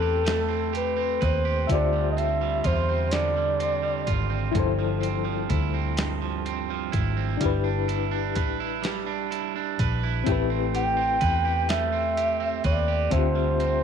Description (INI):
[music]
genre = slow six-eight R&B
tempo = 42 BPM (dotted quarters)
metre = 6/8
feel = straight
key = A minor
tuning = A4 = 442 Hz
[part]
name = breathy flugelhorn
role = melody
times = 0.0-4.2, 10.8-13.8 s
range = A4 to G5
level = -26 LUFS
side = equal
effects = tape echo
[part]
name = electric guitar at the edge of break-up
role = second line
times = 0.0-13.8 s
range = G2 to B4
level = -29 LUFS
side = right 14 dB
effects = none
[part]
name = reed electric piano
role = accompaniment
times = 0.0-13.8 s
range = F3 to E5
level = -31 LUFS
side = left 15 dB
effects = fast tremolo
[part]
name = vintage muted fingered electric bass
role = bass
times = 0.0-13.8 s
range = G1 to E2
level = -28 LUFS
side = equal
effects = none
[part]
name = dusty soul sampler-style drum kit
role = drums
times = 0.3-13.8 s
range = hi-hat, kick drum, snare drum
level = -30 LUFS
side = equal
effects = none
[sound]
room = light reverb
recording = 1960s-style stereo with parts hard left and right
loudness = -22 LUFS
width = side -7 dB against mid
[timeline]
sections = 0.0-13.8 A section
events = none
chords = 0.0 Am9; 1.7 Dm11; 4.5 G13sus4; 7.4 Em7/G; 10.3 Am9; 13.1 Dm11